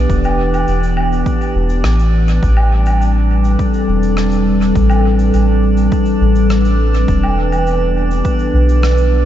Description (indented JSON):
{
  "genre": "ambient dub",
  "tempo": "103 BPM",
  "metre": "4/4",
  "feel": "straight",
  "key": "A minor",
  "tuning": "A4 = 440 Hz",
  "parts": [
    { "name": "warbly tape-like pad", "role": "sustained chords", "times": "0.0-9.3 s", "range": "E3 to B4", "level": "-16 LUFS", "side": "equal", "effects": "chorus, built-in reverb" },
    { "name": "soft dub sub bass", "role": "bass", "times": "0.0-9.3 s", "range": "E1 to B1", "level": "-14 LUFS", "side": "equal", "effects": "none" },
    { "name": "drifting glass-harmonics texture", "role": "texture", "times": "0.0-9.3 s", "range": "D4 to D5", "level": "-27 LUFS", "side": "right 1 dB", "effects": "chorus, built-in reverb" },
    { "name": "cabasa, woodblock and rim click", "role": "drums", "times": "0.1-9.1 s", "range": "none", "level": "-24 LUFS", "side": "right 1 dB", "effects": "dub echo" },
    { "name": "electronic kick drum", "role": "drums", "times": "0.1-8.4 s", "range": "none", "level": "-18 LUFS", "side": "equal", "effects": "overdrive" }
  ],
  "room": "moderate huge ambient reverb, RT60 8.1 s",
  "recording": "dreamy mix soaked in reverb, nothing above 7.7 kHz",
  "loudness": "-11 LUFS",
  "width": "side -11 dB against mid",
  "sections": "0.0-9.3 A section",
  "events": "none",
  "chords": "0.0 Em7; 2.4 Am11; 7.1 Em7"
}